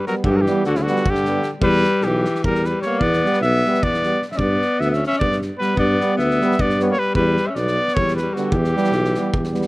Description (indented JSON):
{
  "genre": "balkan folk, Balkan brass band",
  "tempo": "305 BPM (eighths)",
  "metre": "7/8",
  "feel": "straight",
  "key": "E dorian sharp4",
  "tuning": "A4 = 440 Hz",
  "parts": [
    { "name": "mellow trumpet", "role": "melody", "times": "0.0-9.7 s", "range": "E4 to E5", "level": "-22 LUFS", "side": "equal", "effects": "none" },
    { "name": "bright alto saxophone", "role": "second line", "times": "0.0-9.7 s", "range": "C#3 to C#4", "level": "-23 LUFS", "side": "left 2 dB", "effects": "slapback echo" },
    { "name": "clear euphonium", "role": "accompaniment", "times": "0.1-9.7 s", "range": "G3", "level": "-25 LUFS", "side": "right 3 dB", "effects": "slapback echo" },
    { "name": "warm trombone", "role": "accompaniment", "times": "0.1-9.7 s", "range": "B3", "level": "-27 LUFS", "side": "left 2 dB", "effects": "none" },
    { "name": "loose indie drum kit", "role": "percussion", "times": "0.1-9.7 s", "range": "kick drum, snare drum", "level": "-26 LUFS", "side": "equal", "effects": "none" },
    { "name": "mellow tuba", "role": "bass", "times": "0.3-9.6 s", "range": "B1 to G2", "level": "-22 LUFS", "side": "equal", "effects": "none" }
  ],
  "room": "little or no reverb",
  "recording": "none",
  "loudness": "-16 LUFS",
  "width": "side -20 dB against mid",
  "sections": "0.0-9.7 A section",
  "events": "none",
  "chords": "0.0 G; 1.6 Em; 4.4 G; 7.1 Em",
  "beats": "0.05 | 0.24 0.44 0.64 0.83 1.03 1.23 1.43 | 1.62 1.82 2.02 2.21 2.41 2.61 2.81 | 3.00 3.20 3.40 3.59 3.79 3.99 4.18 | 4.38 4.58 4.78 4.97 5.17 5.37 5.57 | 5.76 5.96 6.16 6.35 6.55 6.75 6.94 | 7.14 7.34 7.53 7.73 7.93 8.12 8.32 | 8.52 8.71 8.91 9.10 9.30 9.50"
}